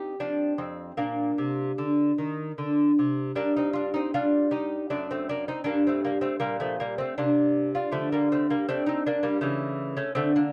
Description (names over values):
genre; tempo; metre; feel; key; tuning
classical, baroque-style dance for lute; 73-81 BPM; 3/4; rubato; Bb major, G minor from 3.4 s; A4 = 440 Hz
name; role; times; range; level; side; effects
lute; solo; 0.0-10.5 s; F2 to G4; -27 LUFS; equal; none
room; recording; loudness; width
light reverb; dark, warm production; -27 LUFS; mono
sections
0.0-3.4 A section; 3.4-10.5 A section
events
none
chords
0.2 F5; 1.0 Bb; 3.4 G5; 4.9 D7b9b13/F#; 5.7 Gm; 7.9 D5; 9.4 A/C#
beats
0.19 | 0.99 1.80 2.60 | 3.39 4.16 4.92 | 5.67 6.43 7.18 | 7.93 8.67 9.42 | 10.18